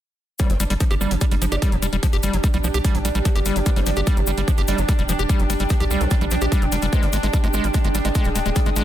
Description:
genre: psychedelic trance.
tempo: 147 BPM.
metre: 4/4.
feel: straight.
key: G phrygian.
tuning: A4 = 441 Hz.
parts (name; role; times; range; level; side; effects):
formant-sweep wobble bass; second line; 0.4-8.2 s; C4 to D4; -36 LUFS; right 4 dB; ensemble chorus, sidechain pumping, high-pass filter, digital delay.
pulsing gated texture; sustained chords; 0.6-8.8 s; D4; -29 LUFS; right 3 dB; chorus, built-in reverb, sidechain pumping.
overdriven acid bass; riff; 0.4-8.8 s; F3 to G4; -26 LUFS; moving between left 6 dB and right 6 dB; auto-pan, sidechain pumping, dub echo.
electronic hi-hat; drums; 0.4-8.8 s; none; -32 LUFS; left 1 dB; none.
electronic kick drum; drums; 0.4-8.6 s; none; -20 LUFS; equal; none.
cabasa; percussion; 0.4-8.8 s; none; -33 LUFS; left 5 dB; none.
granular cloud pad; texture; 1.2-8.8 s; G4 to Eb6; -29 LUFS; right 1 dB; built-in reverb, sidechain pumping.
tight sequencer bass; bass; 0.5-8.8 s; Eb1 to C2; -23 LUFS; equal; none.
room: light reverb, digital ambience.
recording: dense, heavily limited modern master.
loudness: -18 LUFS.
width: side -12 dB against mid.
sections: 0.4-8.8 A section.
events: none.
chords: 0.4 G5; 6.9 Ab5.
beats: | 0.40 0.80 1.21 1.62 | 2.03 2.44 2.85 3.25 | 3.66 4.07 4.48 4.89 | 5.29 5.70 6.11 6.52 | 6.93 7.33 7.74 8.15 | 8.56.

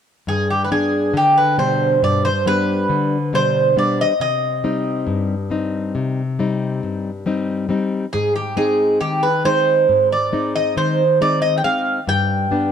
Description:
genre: greek folk, Greek bouzouki band.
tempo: 137 BPM (eighths).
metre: 9/8.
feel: straight.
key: unclear.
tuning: A4 = 439 Hz.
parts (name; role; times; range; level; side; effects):
Greek bouzouki; melody; 0.3-12.7 s; G4 to G5; -17 LUFS; right 2 dB; none.
nylon-string guitar; accompaniment; 0.3-12.7 s; G2 to Eb4; -20 LUFS; left 3 dB; none.
room: light reverb.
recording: dark, warm production.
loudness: -16 LUFS.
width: side -8 dB against mid.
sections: 0.3-12.7 A section.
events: none.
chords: 0.3 G; 4.2 Cm; 8.1 Ab; 12.1 G.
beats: | 0.27 0.71 1.15 1.58 2.02 2.46 2.90 3.33 3.77 | 4.21 4.65 5.08 5.52 5.96 6.40 6.83 7.27 7.71 | 8.14 8.58 9.02 9.46 9.89 10.33 10.76 11.20 11.63 | 12.07 12.50.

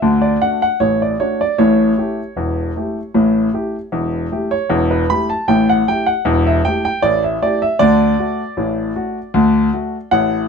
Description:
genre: ragtime piano.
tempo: 77 BPM.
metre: 2/4.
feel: straight.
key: D major.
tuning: A4 = 440 Hz.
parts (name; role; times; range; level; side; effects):
warm grand piano; solo; 0.0-10.5 s; E1 to B5; -14 LUFS; equal; none.
room: light reverb.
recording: dark, warm production.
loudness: -14 LUFS.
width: side -6 dB against mid.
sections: 0.0-10.5 A section.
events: none.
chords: 0.0 D; 1.6 A5/E; 7.8 D.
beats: | 0.02 0.80 | 1.58 2.36 | 3.14 3.92 | 4.70 5.47 | 6.25 7.03 | 7.80 8.57 | 9.35 10.12.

